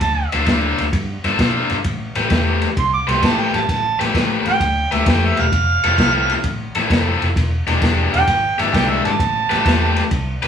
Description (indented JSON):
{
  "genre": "electric blues shuffle",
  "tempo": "131 BPM",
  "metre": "4/4",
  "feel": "swing 68% on 8ths",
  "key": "A minor",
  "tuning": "A4 = 441 Hz",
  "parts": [
    { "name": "mellow harmonica", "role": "second line", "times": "0.0-10.4 s", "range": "E5 to D6", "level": "-19 LUFS", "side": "right 4 dB", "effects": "none" },
    { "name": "vintage muted fingered electric bass", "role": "bass", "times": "0.0-10.5 s", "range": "E1 to B2", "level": "-21 LUFS", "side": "equal", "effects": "none" },
    { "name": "vintage drum kit", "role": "drums", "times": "0.0-10.5 s", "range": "kick drum, ride cymbal, snare drum", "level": "-22 LUFS", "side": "equal", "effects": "none" },
    { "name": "cranked stack guitar", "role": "riff", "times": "0.3-10.5 s", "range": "E3 to E5", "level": "-19 LUFS", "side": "left 4 dB", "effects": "overdrive" }
  ],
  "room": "moderate studio reverb, RT60 0.5 s",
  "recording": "band playing live in one room, small room ambience",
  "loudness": "-15 LUFS",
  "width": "side -8 dB against mid",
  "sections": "0.0-10.5 A section",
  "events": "harmonica solo 0.0-10.5",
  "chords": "0.0 Dm9; 1.8 Am9; 5.5 Fmaj7; 7.4 E7#9; 9.2 Am9",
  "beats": "| 0.01 0.47 0.93 1.39 | 1.85 2.31 2.77 3.23 | 3.69 4.15 4.61 5.07 | 5.52 5.98 6.44 6.90 | 7.36 7.82 8.28 8.74 | 9.20 9.66 10.12"
}